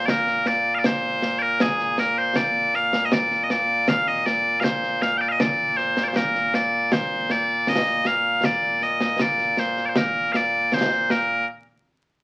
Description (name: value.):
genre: scottish traditional, Scottish pipe music.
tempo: 79 BPM.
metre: 2/4.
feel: straight.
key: Bb major.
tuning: A4 = 441 Hz.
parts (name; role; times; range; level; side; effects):
loud bright bagpipes; melody; 0.0-11.5 s; Bb2 to G5; -23 LUFS; equal; none.
concert snare drum and concert bass drum; drums; 0.1-11.5 s; none; -28 LUFS; equal; none.
room: wet club reverb, RT60 0.7 s.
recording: very old 78 rpm record, vinyl crackle.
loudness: -22 LUFS.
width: mono.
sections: 0.0-11.5 A section.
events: none.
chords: none.